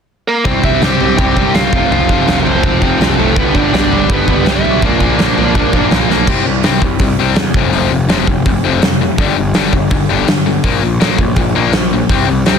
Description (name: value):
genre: punk rock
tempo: 165 BPM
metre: 4/4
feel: straight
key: unclear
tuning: A4 = 440 Hz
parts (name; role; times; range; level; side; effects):
- bluesy overdriven lead guitar; melody; 0.3-5.9 s; A3 to G5; -17 LUFS; right 3 dB; distortion
- distorted electric guitar; riff; 0.4-12.6 s; F2 to C4; -16 LUFS; left 11 dB; overdrive
- biting overdriven guitar; riff; 0.5-6.3 s; F2 to C4; -18 LUFS; right 17 dB; none
- fuzz picked electric bass; bass; 0.5-12.6 s; F1 to E2; -18 LUFS; right 1 dB; overdrive
- big rock drum kit; drums; 0.5-12.5 s; crash cymbal, hi-hat, kick drum, snare drum, toms; -14 LUFS; equal; none
room: little or no reverb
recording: dense, heavily limited modern master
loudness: -10 LUFS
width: side -6 dB against mid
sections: 0.5-6.3 A section; 6.3-12.6 B section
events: drum fill 6.1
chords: 0.5 C; 1.7 F; 3.4 G; 4.8 Bb; 6.3 C5; 7.5 F5; 9.2 G5; 10.6 Bb5